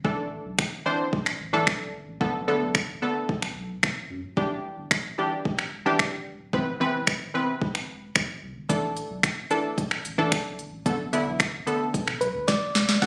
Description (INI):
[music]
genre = dance-pop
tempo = 111 BPM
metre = 4/4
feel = straight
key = unclear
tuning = A4 = 438 Hz
[part]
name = punchy chord stab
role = accompaniment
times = 0.0-13.1 s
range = D3 to C5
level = -29 LUFS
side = equal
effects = chorus, sidechain pumping
[part]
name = warm sub bass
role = bass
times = 0.0-13.1 s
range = D1 to B2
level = -42 LUFS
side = equal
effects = sidechain pumping
[part]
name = smooth R&B drum kit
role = drums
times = 0.0-13.1 s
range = finger snaps, hi-hat, kick drum, snare drum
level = -26 LUFS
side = equal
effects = overdrive
[part]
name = soft struck synth lead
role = melody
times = 12.2-13.1 s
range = B4 to F#5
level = -29 LUFS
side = equal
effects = chorus
[sound]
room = light reverb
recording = recorded on a phone in the room, studio reverb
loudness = -27 LUFS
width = mono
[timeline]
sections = 0.0-13.0 A section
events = drum fill 12.5-13.0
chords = 0.0 Asus4; 2.2 Bm7; 4.4 Em7; 6.5 Cmaj7/E; 8.7 Asus4; 10.9 Bm7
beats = | 0.05 0.59 1.13 1.67 | 2.21 2.75 3.29 3.83 | 4.37 4.91 5.45 5.99 | 6.53 7.07 7.62 8.15 | 8.70 9.24 9.78 10.32 | 10.86 11.40 11.94 12.48 | 13.02